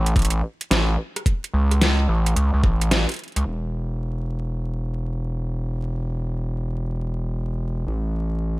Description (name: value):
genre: glitch hop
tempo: 109 BPM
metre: 4/4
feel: swing 64% on 16ths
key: unclear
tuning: A4 = 440 Hz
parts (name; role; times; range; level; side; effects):
- gritty driven synth bass; bass; 0.0-8.6 s; E1 to C#2; -22 LUFS; equal; overdrive
- dubstep drum kit; drums; 0.1-3.4 s; hi-hat, rim click, snare drum; -23 LUFS; equal; none
- electronic kick drum; drums; 0.2-2.8 s; none; -19 LUFS; equal; none
room: little or no reverb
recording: vinyl crackle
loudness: -21 LUFS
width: side -20 dB against mid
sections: 0.0-3.5 A section; 3.5-8.6 B section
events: drop 0.0-3.5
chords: none